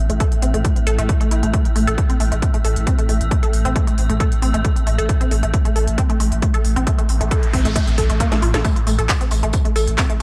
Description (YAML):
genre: driving peak-time techno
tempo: 135 BPM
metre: 4/4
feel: straight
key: unclear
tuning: A4 = 441 Hz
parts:
  - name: saturated sub bass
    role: bass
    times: 0.0-10.2 s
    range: A1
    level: -23 LUFS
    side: equal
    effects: overdrive, sidechain pumping, low-pass filter
  - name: swarming drone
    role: drone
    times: 0.0-10.2 s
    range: A2 to A3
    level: -30 LUFS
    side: equal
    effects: built-in reverb, sidechain pumping
  - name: resonant blip pluck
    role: riff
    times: 0.1-10.2 s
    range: A3 to A4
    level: -26 LUFS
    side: equal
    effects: phaser, overdrive, sidechain pumping, tape echo
  - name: techno drum kit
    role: drums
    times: 0.1-10.2 s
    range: handclaps, hi-hat, snare drum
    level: -30 LUFS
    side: equal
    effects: sidechain pumping on hats
  - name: electronic kick drum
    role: drums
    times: 0.2-10.1 s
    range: none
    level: -21 LUFS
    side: equal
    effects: none
  - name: noise sweep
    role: sound effects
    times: 7.1-8.6 s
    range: none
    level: -34 LUFS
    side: equal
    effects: none
  - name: tambourine and snare drum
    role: drums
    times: 8.6-10.1 s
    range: none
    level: -37 LUFS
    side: equal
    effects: high-pass filter on snare, sidechain pumping on perc, high-pass filter on perc, high-pass filter on room
room: little or no reverb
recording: dry, gritty hardware recording, cassette tape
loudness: -18 LUFS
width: mono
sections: 0.0-10.2 A section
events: noise sweep 7.1-8.6; drum fill 8.3-8.6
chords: none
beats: 0.20 0.65 1.09 | 1.53 1.98 2.42 2.87 | 3.31 3.76 4.20 4.65 | 5.09 5.54 5.98 6.42 | 6.87 7.31 7.76 8.20 | 8.65 9.09 9.54 9.98